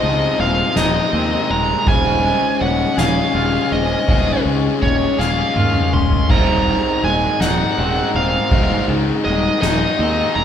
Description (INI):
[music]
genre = post-rock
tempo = 54 BPM (dotted quarters)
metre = 6/8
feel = straight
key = unclear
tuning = A4 = 441 Hz
[part]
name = smooth overdriven lead guitar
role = melody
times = 0.0-10.4 s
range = Db5 to C6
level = -20 LUFS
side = right 2 dB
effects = none
[part]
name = rich studio string section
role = sustained chords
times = 0.0-10.4 s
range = Db4 to Ab5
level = -29 LUFS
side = right 1 dB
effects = none
[part]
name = twangy electric guitar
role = arpeggios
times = 0.0-10.4 s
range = F2 to Ab4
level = -27 LUFS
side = left 1 dB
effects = none
[part]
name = vibraphone with medium hard mallets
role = arpeggios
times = 0.0-10.4 s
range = Ab4 to Eb5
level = -28 LUFS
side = right 9 dB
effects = none
[part]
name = cranked stack guitar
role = riff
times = 0.0-10.4 s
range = F2 to Ab4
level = -21 LUFS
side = left 6 dB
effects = overdrive
[part]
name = fuzz fingered electric bass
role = bass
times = 0.0-10.4 s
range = Eb1 to Eb2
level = -22 LUFS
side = equal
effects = overdrive
[part]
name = soft-mallet drum kit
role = drums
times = 0.0-10.4 s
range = crash cymbal, kick drum, ride cymbal, snare drum, toms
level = -21 LUFS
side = equal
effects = none
[sound]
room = wet studio reverb, RT60 0.7 s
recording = band playing live in one room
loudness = -14 LUFS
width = side -9 dB against mid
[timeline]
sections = 0.0-10.4 A section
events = drum fill 5.2-6.3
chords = 0.0 Fm7/Eb; 6.3 Ab7/Eb